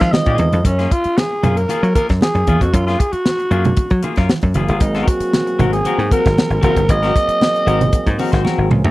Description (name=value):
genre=funk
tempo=115 BPM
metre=4/4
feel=straight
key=unclear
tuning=A4 = 436 Hz
part: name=growling alto saxophone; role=melody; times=0.0-8.4 s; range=Db4 to F5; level=-18 LUFS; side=equal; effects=none
part: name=clean electric guitar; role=accompaniment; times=0.0-8.9 s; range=Bb3 to Eb5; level=-24 LUFS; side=left 5 dB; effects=none
part: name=tonewheel organ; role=sustained chords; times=0.0-0.6, 4.8-8.9 s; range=Eb3 to Ab4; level=-25 LUFS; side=right 2 dB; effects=stopped rotary speaker
part: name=dry thumbed slap bass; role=bass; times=0.0-8.9 s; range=Gb1 to Gb3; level=-17 LUFS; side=equal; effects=none
part: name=tight funk drum kit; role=drums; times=0.0-8.9 s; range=hi-hat, kick drum, snare drum, toms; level=-17 LUFS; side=equal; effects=none
part: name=congas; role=percussion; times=0.1-8.8 s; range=none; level=-24 LUFS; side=right 3 dB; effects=none
room=small room ambience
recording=dry, close 1970s-style studio recording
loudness=-13 LUFS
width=side -18 dB against mid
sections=0.7-8.9 A section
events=drum fill 8.4-8.9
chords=0.0 Fm7; 0.7 Gbmaj9; 4.8 Ab9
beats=0.13 | 0.65 1.17 1.69 2.21 | 2.73 3.25 3.77 4.29 | 4.82 5.33 5.85 6.37 | 6.89 7.41 7.93 8.45